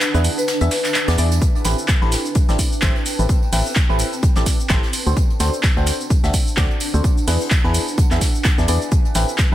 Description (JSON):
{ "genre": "piano house", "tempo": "128 BPM", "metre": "4/4", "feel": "swing 57% on 16ths", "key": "A dorian", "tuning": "A4 = 443 Hz", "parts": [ { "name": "analog string pad", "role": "sustained chords", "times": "0.0-1.4 s", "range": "B4 to B5", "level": "-42 LUFS", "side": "left 5 dB", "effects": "none" }, { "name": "house drum kit", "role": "drums", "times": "0.0-9.5 s", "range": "cabasa, handclaps, hi-hat", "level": "-23 LUFS", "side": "equal", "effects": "studio ambience" }, { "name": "soft brush drum kit", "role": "drums", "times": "0.0-9.5 s", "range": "hi-hat, snare drum", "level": "-31 LUFS", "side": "left 2 dB", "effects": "high-pass filter on hats, studio ambience, soft clipping on snare, high-pass filter on snare, high-pass filter on room" }, { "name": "tambourine", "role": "percussion", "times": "0.0-9.5 s", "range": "none", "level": "-34 LUFS", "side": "right 9 dB", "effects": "none" }, { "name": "granular cloud pad", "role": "texture", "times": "0.0-9.5 s", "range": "C4 to A5", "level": "-29 LUFS", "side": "right 2 dB", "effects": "built-in reverb, sidechain pumping" }, { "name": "barking FM electric piano", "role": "riff", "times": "0.1-9.5 s", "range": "B3 to E5", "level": "-25 LUFS", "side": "equal", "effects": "phaser, sidechain pumping, digital delay" }, { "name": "organ-like FM bass", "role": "bass", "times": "0.1-9.5 s", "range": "A1 to E2", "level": "-18 LUFS", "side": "equal", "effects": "tube saturation, sidechain pumping" }, { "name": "marimba with medium mallets", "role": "melody", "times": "0.4-1.1 s", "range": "B4", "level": "-26 LUFS", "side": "left 4 dB", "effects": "digital delay" }, { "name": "electronic kick drum", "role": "drums", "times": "1.4-9.5 s", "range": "none", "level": "-17 LUFS", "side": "equal", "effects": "studio ambience" } ], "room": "small room ambience", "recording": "dense, heavily limited modern master", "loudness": "-15 LUFS", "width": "side -13 dB against mid", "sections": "0.0-1.4 A section; 1.4-9.5 B section", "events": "break 0.0-1.4; drop 0.0-1.4", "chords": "0.0 E7; 1.4 Am9; 4.9 D7; 7.0 E7; 8.9 Am9", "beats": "0.01 0.48 0.95 | 1.42 1.89 2.35 2.82 | 3.29 3.76 4.23 4.70 | 5.17 5.64 6.11 6.57 | 7.04 7.51 7.98 8.45 | 8.92 9.39" }